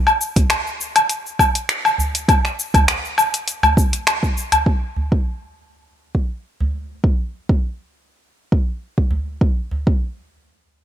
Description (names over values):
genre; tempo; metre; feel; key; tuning
downtempo; 101 BPM; 4/4; swing 54% on 16ths; none; none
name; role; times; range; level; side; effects
deep house drum kit; drums; 0.1-4.6 s; cabasa, finger snaps, hi-hat, woodblock; -17 LUFS; left 2 dB; overdrive, low-pass filter on perc, low-pass filter on hats, low-pass filter on snare, low-pass filter on room
electronic kick drum; drums; 0.4-10.0 s; none; -17 LUFS; right 1 dB; overdrive
udu; percussion; 0.4-9.8 s; none; -22 LUFS; right 1 dB; none
room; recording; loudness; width
little or no reverb; none; -17 LUFS; side -10 dB against mid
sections
0.0-4.7 A section; 4.7-10.8 B section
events
none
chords
none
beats
0.50 1.10 1.69 | 2.28 2.88 3.47 4.07 | 4.66 5.25 5.85 6.44 | 7.04 7.63 8.22 8.82 | 9.41